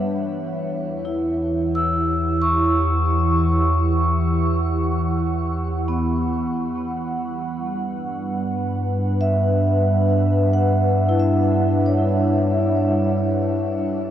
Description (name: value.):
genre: ambient.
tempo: free time.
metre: none.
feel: none.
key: unclear.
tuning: A4 = 440 Hz.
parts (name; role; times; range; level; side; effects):
warbly tape-like pad; sustained chords; 0.0-14.1 s; E3 to F#5; -23 LUFS; equal; chorus, built-in reverb, shimmer reverb.
vibraphone with soft mallets; arpeggios; 0.0-14.1 s; B3 to E6; -23 LUFS; equal; diffuse ambient delay, shimmer reverb.
deep rumbling drone; bass; 0.0-14.1 s; E2 to G2; -22 LUFS; equal; built-in reverb.
room: moderate huge ambient reverb, RT60 8.4 s.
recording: none.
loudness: -18 LUFS.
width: side -10 dB against mid.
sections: 0.0-14.1 A section.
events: none.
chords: 0.0 Emadd9; 7.2 Gmaj7.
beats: free time.